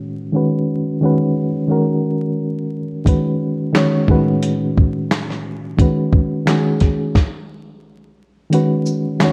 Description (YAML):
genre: lo-fi hip hop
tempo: 88 BPM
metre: 4/4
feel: swing 58% on 16ths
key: unclear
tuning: A4 = 442 Hz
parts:
  - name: reed electric piano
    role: accompaniment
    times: 0.0-9.3 s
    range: A2 to C#5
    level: -19 LUFS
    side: equal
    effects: fast tremolo, cassette tape, low-pass filter
  - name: dusty soul sampler-style drum kit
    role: drums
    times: 3.1-9.3 s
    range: handclaps, hi-hat, kick drum, shaker, snare drum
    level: -18 LUFS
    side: equal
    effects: vintage 12-bit sampler grit
room: light reverb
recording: vinyl crackle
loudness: -18 LUFS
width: mono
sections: 0.0-8.5 A section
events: filter sweep on reed electric piano 0.0-8.5; stop 7.2-8.5; kick muted 8.5-9.3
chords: 0.3 B; 1.7 F#add9; 3.1 C#5; 4.1 Amaj7; 5.8 B; 7.2 N.C.; 8.5 C#5